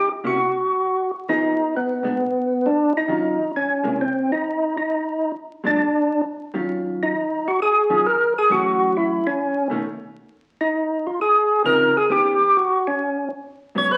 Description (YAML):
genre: jazz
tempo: 133 BPM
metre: 4/4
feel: swing 67% on 8ths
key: Eb minor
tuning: A4 = 445 Hz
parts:
  - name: percussive tonewheel organ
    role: melody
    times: 0.0-14.0 s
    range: Cb4 to Db5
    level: -21 LUFS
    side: equal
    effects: slow rotary speaker, overdrive
  - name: vintage hollow-body jazz guitar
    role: accompaniment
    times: 0.2-13.9 s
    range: Gb2 to Ab4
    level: -29 LUFS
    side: equal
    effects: none
room: wet large studio reverb, RT60 1.1 s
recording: very old 78 rpm record, vinyl crackle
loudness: -21 LUFS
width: mono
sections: 0.0-6.7 A section; 6.7-14.0 B section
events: none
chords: 0.4 N.C.; 1.3 Fm7b5; 2.2 N.C.; 3.1 Ebm9; 4.0 N.C.; 4.9 Bbadd11; 5.8 Ebm9; 8.5 Gbm7; 9.4 B9; 10.3 Dbmaj9; 12.1 Eb7alt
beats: 0.38 0.83 | 1.28 1.73 2.19 2.64 | 3.09 3.54 3.99 4.44 | 4.89 5.34 5.79 6.24 | 6.69 7.14 7.60 8.05 | 8.50 8.95 9.40 9.85 | 10.30 10.75 11.20 11.65 | 12.10 12.55 13.00 13.45 | 13.90